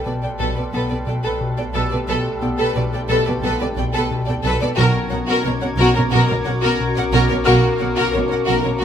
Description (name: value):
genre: cinematic, suspense film score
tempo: 89 BPM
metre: 4/4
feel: straight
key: unclear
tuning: A4 = 440 Hz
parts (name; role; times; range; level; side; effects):
- warm studio violin section; melody; 0.0-8.8 s; A#4 to G5; -27 LUFS; left 3 dB; none
- dark studio violin section; second line; 0.0-8.8 s; F#4 to D5; -23 LUFS; equal; none
- rich studio viola section; accompaniment; 0.0-8.8 s; A4 to A#4; -25 LUFS; right 1 dB; none
- glass harmonica; sustained chords; 0.0-8.8 s; C#4 to A#5; -30 LUFS; left 2 dB; none
- warm French horn section; sustained chords; 0.0-8.8 s; A3 to A#4; -27 LUFS; left 4 dB; none
- swarming drone; drone; 0.0-8.8 s; B1; -32 LUFS; equal; built-in reverb
- clear concert grand piano; texture; 0.0-8.8 s; E#5 to E#6; -32 LUFS; left 1 dB; none
- rich studio violin section; texture; 0.0-8.8 s; B5 to G#6; -34 LUFS; left 1 dB; none
- round analog bass; riff; 0.1-8.8 s; B2 to B3; -26 LUFS; left 2 dB; none
- dark studio cello section; bass; 0.1-8.8 s; B2; -25 LUFS; right 2 dB; none
- dark studio double bass section; bass; 0.1-8.8 s; B1; -23 LUFS; right 3 dB; none
- timpani; percussion; 4.8-5.7 s; B2; -28 LUFS; equal; none
room: light reverb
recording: close, detailed microphones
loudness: -16 LUFS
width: side -9 dB against mid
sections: 0.0-8.8 A section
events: none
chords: 0.0 Gadd9/B; 4.8 F#/B